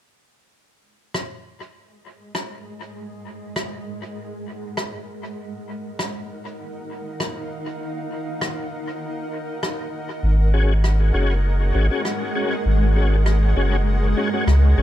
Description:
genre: ambient dub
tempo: 99 BPM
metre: 4/4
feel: swing 54% on 16ths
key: unclear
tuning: A4 = 441 Hz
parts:
  - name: granular cloud pad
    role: sustained chords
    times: 2.2-14.8 s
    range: Ab3 to Gb5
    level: -28 LUFS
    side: right 1 dB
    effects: built-in reverb
  - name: rim click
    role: drums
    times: 1.1-14.6 s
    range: none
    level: -30 LUFS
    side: left 1 dB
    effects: dub echo
  - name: warm sub bass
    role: bass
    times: 10.2-14.8 s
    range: Gb1 to Db2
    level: -17 LUFS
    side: equal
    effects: none
  - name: tonewheel organ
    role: stabs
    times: 10.5-14.8 s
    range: Db4 to Ab4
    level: -25 LUFS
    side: left 3 dB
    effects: chorus vibrato, fast rotary speaker, dub echo
room: light reverb, studio reverb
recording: none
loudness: -20 LUFS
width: side -13 dB against mid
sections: 0.5-14.8 A section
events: fade-in on ambient pad 0.5-14.8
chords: 0.5 Ab5; 5.4 Ebm; 10.2 Ab7sus4

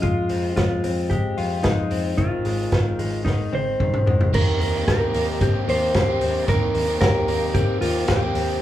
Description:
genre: jangly indie pop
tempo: 112 BPM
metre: 4/4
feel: straight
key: Eb major from 4.3 s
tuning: A4 = 441 Hz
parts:
  - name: mellow electric guitar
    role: melody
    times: 0.0-8.6 s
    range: Eb4 to C5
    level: -25 LUFS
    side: right 2 dB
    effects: none
  - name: direct-recorded clean electric guitar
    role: arpeggios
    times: 0.0-8.6 s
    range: Eb3 to G4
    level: -26 LUFS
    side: left 6 dB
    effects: none
  - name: vintage muted fingered electric bass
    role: bass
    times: 0.0-8.6 s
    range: Ab1 to F2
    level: -28 LUFS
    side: right 1 dB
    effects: none
  - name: vintage drum kit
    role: drums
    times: 0.0-8.5 s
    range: crash cymbal, hi-hat, kick drum, ride cymbal, snare drum, toms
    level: -22 LUFS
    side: equal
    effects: none
  - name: overdriven electric guitar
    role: accompaniment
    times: 4.3-8.6 s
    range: Eb3 to G4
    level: -29 LUFS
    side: right 6 dB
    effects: none
room: light reverb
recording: band playing live in one room, small room ambience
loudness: -19 LUFS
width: side -12 dB against mid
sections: 0.0-4.3 A section; 4.3-8.6 B section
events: drum fill 3.3-4.3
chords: 0.0 Fm; 2.2 Ab; 4.3 Eb6

